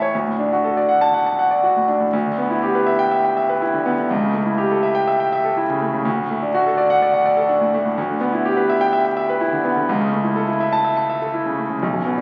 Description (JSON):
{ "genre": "classical, virtuoso piano study", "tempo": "123 BPM", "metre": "4/4", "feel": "rubato", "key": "D major", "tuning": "A4 = 440 Hz", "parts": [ { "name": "clear grand piano", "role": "solo", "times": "0.0-12.2 s", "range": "B1 to A5", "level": "-19 LUFS", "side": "equal", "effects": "none" } ], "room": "wet recital hall reverb, RT60 1.3 s", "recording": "very old 78 rpm record, vinyl crackle, nothing above 7.7 kHz", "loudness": "-19 LUFS", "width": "mono", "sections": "0.1-12.2 A section", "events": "none", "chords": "0.1 D; 2.1 Em7/D; 4.1 A7/C#; 6.0 D; 8.0 Em7/D; 9.9 A/C#" }